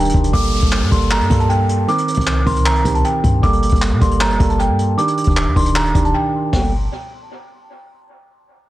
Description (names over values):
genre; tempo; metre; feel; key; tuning
hip hop, trap; 155 BPM; 4/4; half-time; G minor; A4 = 442 Hz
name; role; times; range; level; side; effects
celesta; melody; 0.0-6.7 s; G5 to D6; -21 LUFS; equal; low-pass filter, dub echo
tine electric piano; accompaniment; 0.0-6.7 s; Eb3 to Bb4; -20 LUFS; right 5 dB; low-pass filter
clean 808-style bass; bass; 0.0-6.9 s; Eb1 to Bb2; -18 LUFS; equal; none
jazz brush drum kit; drums; 0.0-6.6 s; handclaps, hi-hat, kick drum, snare drum; -18 LUFS; equal; vintage 12-bit sampler grit, dub echo
downlifter; sound effects; 0.3-3.4 s; none; -29 LUFS; left 2 dB; none
room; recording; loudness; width
studio reverb; echo-heavy mix; -13 LUFS; side -15 dB against mid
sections
0.3-6.5 A section; 6.5-8.1 B section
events
filter sweep 0.3-6.5; break 6.1-6.5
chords
0.3 Gmadd9; 1.9 Cm7; 3.4 Gmadd9; 5.0 Ebmaj7; 6.5 Gmadd9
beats
| 0.34 0.72 1.11 1.50 | 1.88 2.27 2.66 3.04 | 3.43 3.82 4.21 4.59 | 4.98 5.37 5.75 6.14 | 6.53